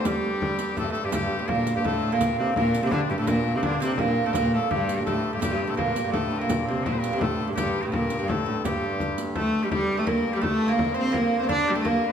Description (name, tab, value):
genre	medieval dance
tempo	168 BPM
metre	3/4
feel	straight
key	G minor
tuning	A4 = 439 Hz
part	clear viola da gamba	melody	0.0-12.1 s	G2 to D4	-26 LUFS	equal	none
part	bright shawm	second line	0.0-12.1 s	C4 to D5	-31 LUFS	left 6 dB	none
part	lute	second line	0.0-12.1 s	G2 to D4	-29 LUFS	right 4 dB	none
part	dark hurdy-gurdy	drone	0.0-12.1 s	G2 to D3	-34 LUFS	left 1 dB	none
part	frame drum	percussion	0.1-12.0 s	none	-31 LUFS	left 2 dB	none
part	riq	percussion	0.1-9.3 s	none	-36 LUFS	right 5 dB	none
room	wet recital hall reverb, RT60 1.5 s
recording	none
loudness	-22 LUFS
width	side -8 dB against mid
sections	0.0-1.1 A section; 1.1-9.7 B section; 9.7-12.1 B section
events	none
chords	none